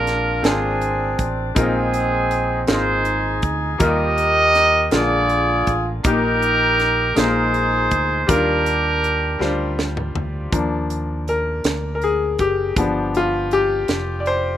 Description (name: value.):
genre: slow gospel.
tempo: 54 BPM (dotted quarters).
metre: 6/8.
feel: straight.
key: Eb major.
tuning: A4 = 440 Hz.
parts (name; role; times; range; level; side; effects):
clear horn section; melody; 0.0-9.8 s; C4 to Eb5; -18 LUFS; right 1 dB; none.
bright grand piano; accompaniment; 0.0-14.6 s; Bb2 to D5; -22 LUFS; left 3 dB; none.
fingered electric bass; bass; 0.0-14.6 s; F1 to Eb2; -25 LUFS; equal; none.
tight funk drum kit; drums; 0.1-14.4 s; hi-hat, kick drum, snare drum, toms; -22 LUFS; right 1 dB; none.
room: small room ambience.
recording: rough home demo mix.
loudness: -17 LUFS.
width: side -11 dB against mid.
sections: 0.0-10.5 A section; 10.5-14.6 B section.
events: drum fill 9.4-10.5; grand piano solo 10.5-14.6.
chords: 0.0 Bb9; 1.6 Bb9sus4; 3.8 Ebadd9; 4.9 Bb7; 6.0 Eb/Bb; 7.2 Bb7sus4; 8.3 Ebmaj9; 10.5 Eb5; 12.8 G7.